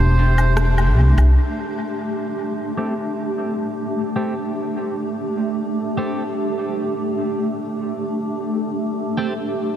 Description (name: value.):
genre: ambient dub.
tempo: 75 BPM.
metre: 4/4.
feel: straight.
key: A minor.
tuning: A4 = 439 Hz.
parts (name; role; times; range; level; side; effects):
melodica; melody; 0.0-0.5 s; C5; -29 LUFS; right 3 dB; dub echo.
granular cloud pad; sustained chords; 0.0-9.8 s; A3 to A4; -22 LUFS; equal; built-in reverb.
upright bass; bass; 0.0-1.3 s; E1 to C2; -14 LUFS; equal; none.
electronic cabasa, woodblock and rim click; drums; 0.4-1.3 s; none; -29 LUFS; left 1 dB; dub echo.
twelve-string electric guitar; stabs; 2.8-9.3 s; A3 to G4; -30 LUFS; right 2 dB; low-pass filter, dub echo.
room: wet huge ambient reverb, RT60 6.4 s.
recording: dreamy mix soaked in reverb.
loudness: -19 LUFS.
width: side -10 dB against mid.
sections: 0.0-1.4 A section; 1.4-9.8 B section.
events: band accent 0.6-1.0; filter sweep on clean electric guitar 1.4-9.8.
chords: 0.0 Am7; 1.4 A7(no3).